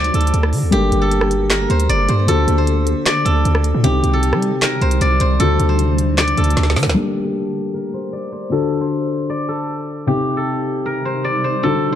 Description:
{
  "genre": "hip hop, trap",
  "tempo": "154 BPM",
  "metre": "4/4",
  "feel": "half-time",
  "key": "G harmonic minor",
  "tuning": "A4 = 442 Hz",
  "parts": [
    { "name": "steel-string zither", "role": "melody", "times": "0.0-12.0 s", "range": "G4 to D5", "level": "-20 LUFS", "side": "left 1 dB", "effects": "low-pass filter, digital delay" },
    { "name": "granular cloud pad", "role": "sustained chords", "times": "0.0-6.9, 10.8-12.0 s", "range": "C3 to A4", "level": "-26 LUFS", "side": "right 2 dB", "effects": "built-in reverb, low-pass filter" },
    { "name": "hard-hitting 808-style bass", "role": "bass", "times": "0.0-7.0 s", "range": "F#1 to G3", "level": "-16 LUFS", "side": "right 1 dB", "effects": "none" },
    { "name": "trap drum kit", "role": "drums", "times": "0.0-7.0 s", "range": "handclaps, hi-hat, rim click, snare drum", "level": "-21 LUFS", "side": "equal", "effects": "none" },
    { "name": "felt-muted upright piano", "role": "accompaniment", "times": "0.7-12.0 s", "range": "C3 to A4", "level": "-21 LUFS", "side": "left 3 dB", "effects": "low-pass filter" },
    { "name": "riser", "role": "sound effects", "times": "11.7-12.0 s", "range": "none", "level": "-40 LUFS", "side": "right 5 dB", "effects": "none" }
  ],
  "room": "light reverb",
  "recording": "dark, warm production",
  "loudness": "-15 LUFS",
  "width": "side -10 dB against mid",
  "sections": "0.0-7.0 A section; 7.0-12.0 B section",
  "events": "drum fill 6.6-7.0; filter sweep 7.0-12.0",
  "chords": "0.0 D; 0.7 Gmadd9; 2.3 D; 3.8 Cm; 5.4 D; 7.0 Gmadd9; 8.5 D; 10.1 Cm",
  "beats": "0.34 | 0.72 1.11 1.50 1.89 | 2.28 2.67 3.06 3.45 | 3.84 4.23 4.62 5.01 | 5.40 5.79 6.18 6.57 | 6.96 7.35 7.74 8.13 | 8.52 8.91 9.30 9.69 | 10.07 10.46 10.86 11.24 | 11.63"
}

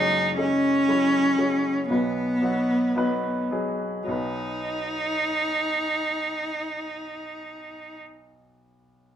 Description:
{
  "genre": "pop",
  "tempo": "53-61 BPM",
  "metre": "4/4",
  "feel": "straight",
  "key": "B major",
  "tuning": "A4 = 441 Hz",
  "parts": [
    { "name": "clear cello", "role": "melody", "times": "0.0-8.0 s", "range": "B3 to D#4", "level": "-24 LUFS", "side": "right 1 dB", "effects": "none" },
    { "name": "warm baby grand piano", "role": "accompaniment", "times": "0.0-9.2 s", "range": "F#1 to B4", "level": "-28 LUFS", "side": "left 2 dB", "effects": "none" }
  ],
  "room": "wet large studio reverb, RT60 0.9 s",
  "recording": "band playing live in one room",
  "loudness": "-22 LUFS",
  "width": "side -10 dB against mid",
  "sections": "0.0-4.1 A section; 4.1-8.6 B section",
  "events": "slowing down 0.0-4.1",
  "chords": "0.0 F#sus2; 1.9 B",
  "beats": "0.88 1.90 2.96 | 4.08 5.22 6.36 7.50"
}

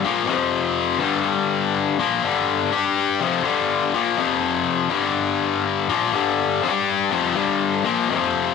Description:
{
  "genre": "rock",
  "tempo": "123 BPM",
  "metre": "4/4",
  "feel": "straight",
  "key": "unclear",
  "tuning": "A4 = 440 Hz",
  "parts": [
    { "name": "distorted electric guitar", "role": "solo", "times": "0.0-8.5 s", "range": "F2 to G4", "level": "-19 LUFS", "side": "left 7 dB", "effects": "overdrive" }
  ],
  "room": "light reverb, digital ambience",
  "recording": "none",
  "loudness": "-19 LUFS",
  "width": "side -5 dB against mid",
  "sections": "0.0-8.5 A section",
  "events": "none",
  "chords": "0.3 F5; 1.0 G5; 4.2 F5; 4.9 G5",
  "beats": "0.04 0.53 | 1.02 1.51 2.00 2.48 | 2.97 3.46 3.95 4.44 | 4.93 5.41 5.90 6.39 | 6.88 7.37 7.85 8.34"
}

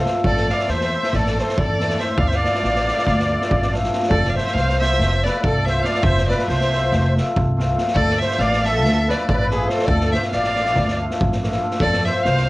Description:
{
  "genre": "balkan folk, Balkan wedding band",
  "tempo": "280 BPM (eighths)",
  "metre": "9/8",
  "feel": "straight",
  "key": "D minor",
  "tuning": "A4 = 442 Hz",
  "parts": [
    { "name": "warm violin", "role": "melody", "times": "0.0-12.5 s", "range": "B4 to F5", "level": "-23 LUFS", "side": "equal", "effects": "cassette tape" },
    { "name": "cimbalom", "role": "accompaniment", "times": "0.0-12.2 s", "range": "A3 to A4", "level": "-25 LUFS", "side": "left 1 dB", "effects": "none" },
    { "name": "street-band drum kit", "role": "percussion", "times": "0.1-12.4 s", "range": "kick drum, snare drum", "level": "-23 LUFS", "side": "equal", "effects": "cassette tape" },
    { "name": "musette accordion", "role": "second line", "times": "0.2-12.5 s", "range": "G#4 to D5", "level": "-24 LUFS", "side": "left 1 dB", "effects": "none" },
    { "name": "upright bass", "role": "bass", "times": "0.2-12.5 s", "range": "F1 to F2", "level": "-22 LUFS", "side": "equal", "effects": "none" }
  ],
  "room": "light reverb",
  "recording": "home recording on cassette",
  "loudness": "-17 LUFS",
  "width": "side -19 dB against mid",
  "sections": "0.0-4.1 A section; 4.1-12.5 B section",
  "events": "none",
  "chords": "0.2 Am; 2.2 Dm; 4.1 F; 8.0 Dm; 11.8 F",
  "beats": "0.03 | 0.24 0.46 0.67 0.89 1.10 1.32 1.53 1.75 1.96 | 2.18 2.39 2.60 2.82 3.03 3.25 3.46 3.68 3.89 | 4.11 4.32 4.53 4.75 4.96 5.17 5.39 5.60 5.82 | 6.03 6.24 6.46 6.67 6.89 7.10 7.31 7.53 7.74 | 7.96 8.17 8.38 8.60 8.81 9.03 9.24 9.45 9.67 | 9.88 10.10 10.31 10.52 10.74 10.95 11.16 11.38 11.59 | 11.80 12.02 12.23 12.44"
}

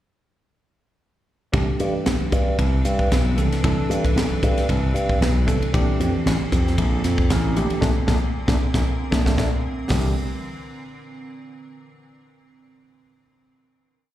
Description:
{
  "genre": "electric jazz fusion",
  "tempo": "115 BPM",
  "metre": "4/4",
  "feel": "swing 54% on 16ths",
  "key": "unclear",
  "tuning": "A4 = 439 Hz",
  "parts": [
    { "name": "tine electric piano", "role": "accompaniment", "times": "1.5-10.1 s", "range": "E3 to A4", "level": "-26 LUFS", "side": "equal", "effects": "medium stereo tremolo, lush chorus, slapback echo" },
    { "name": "icy glass pad", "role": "sustained chords", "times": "1.9-10.1 s", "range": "Bb2 to B4", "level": "-31 LUFS", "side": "right 2 dB", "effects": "chorus, built-in reverb" },
    { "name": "slap bass with an envelope filter", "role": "bass", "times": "1.5-10.1 s", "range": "A1 to G2", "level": "-21 LUFS", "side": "equal", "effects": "none" },
    { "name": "crisp fusion drum kit", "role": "drums", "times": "1.5-10.0 s", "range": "hi-hat, kick drum, ride cymbal, snare drum", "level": "-23 LUFS", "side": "equal", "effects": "none" }
  ],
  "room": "little or no reverb",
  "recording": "live gig heard through the venue's PA, recital hall reverb",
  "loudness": "-18 LUFS",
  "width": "side -13 dB against mid",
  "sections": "1.5-9.9 groove; 9.9-12.0 final chord",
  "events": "drum fill 7.8-9.9; band accent 7.8-9.9",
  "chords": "1.5 Cmaj9; 5.7 Bbmaj9; 9.9 Cmaj9",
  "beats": "| 1.53 2.06 2.58 3.11 | 3.63 4.16 4.68 5.21 | 5.73 6.26 6.78 7.30 | 7.82 8.34 8.87 9.39 | 9.91"
}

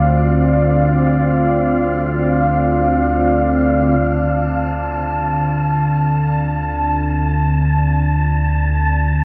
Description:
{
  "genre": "dark ambient drone",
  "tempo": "free time",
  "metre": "none",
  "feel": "none",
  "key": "D minor",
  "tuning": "A4 = 440 Hz",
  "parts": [
    { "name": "deep dark ambient pad", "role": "sustained chords", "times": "0.0-9.2 s", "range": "C4 to D5", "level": "-22 LUFS", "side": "equal", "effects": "chorus, built-in reverb, shimmer reverb" },
    { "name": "analog drone", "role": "drone", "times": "0.0-9.2 s", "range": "D2 to D3", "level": "-19 LUFS", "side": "equal", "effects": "chorus" },
    { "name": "wind-like tuned noise texture", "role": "texture", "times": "0.0-9.2 s", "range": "F5 to A5", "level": "-24 LUFS", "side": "equal", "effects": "built-in reverb, shimmer reverb" }
  ],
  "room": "wet cathedral reverb, RT60 6.9 s",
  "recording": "worn, warbling old tape, cassette tape, warbly pitch drift",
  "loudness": "-16 LUFS",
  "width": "mono",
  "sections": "0.0-4.0 A section; 4.0-9.2 B section",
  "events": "filter sweep on synth drone 4.0-9.2",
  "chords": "0.0 Dm7",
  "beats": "free time"
}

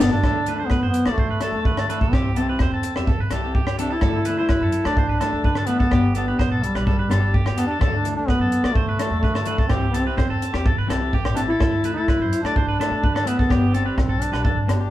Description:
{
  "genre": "highlife guitar band",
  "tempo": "127 BPM",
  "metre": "4/4",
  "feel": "straight",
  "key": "unclear",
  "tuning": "A4 = 440 Hz",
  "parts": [
    { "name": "warm duduk", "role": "melody", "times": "0.0-14.9 s", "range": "G3 to E4", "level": "-23 LUFS", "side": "equal", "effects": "none" },
    { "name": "electric guitar at the edge of break-up", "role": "accompaniment", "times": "0.0-14.9 s", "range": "E3 to A4", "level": "-29 LUFS", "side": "left 4 dB", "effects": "none" },
    { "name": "electric guitar at the edge of break-up", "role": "arpeggios", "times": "0.0-14.7 s", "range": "G4 to E5", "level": "-28 LUFS", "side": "equal", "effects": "none" },
    { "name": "upright bass", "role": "bass", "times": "0.0-14.9 s", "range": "G1 to D3", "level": "-26 LUFS", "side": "equal", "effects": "none" },
    { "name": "compact cocktail drum kit", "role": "drums", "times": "0.0-14.8 s", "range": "hi-hat, kick drum, rim click, snare drum, toms", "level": "-22 LUFS", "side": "equal", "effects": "none" }
  ],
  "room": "moderate stone room reverb, RT60 0.9 s",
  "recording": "band playing live in one room",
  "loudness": "-18 LUFS",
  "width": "side -14 dB against mid",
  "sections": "0.2-14.9 A section",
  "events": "drum fill 0.0",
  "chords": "0.2 Dsus2; 2.1 C; 4.0 Dsus2; 5.9 G; 7.8 Dsus2; 9.7 C; 11.6 Dsus2; 13.5 G",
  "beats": "| 0.24 0.71 1.19 1.66 | 2.13 2.61 3.08 3.55 | 4.03 4.50 4.97 5.45 | 5.92 6.39 6.87 7.34 | 7.82 8.29 8.76 9.23 | 9.71 10.18 10.65 11.13 | 11.60 12.07 12.55 13.02 | 13.49 13.97 14.44"
}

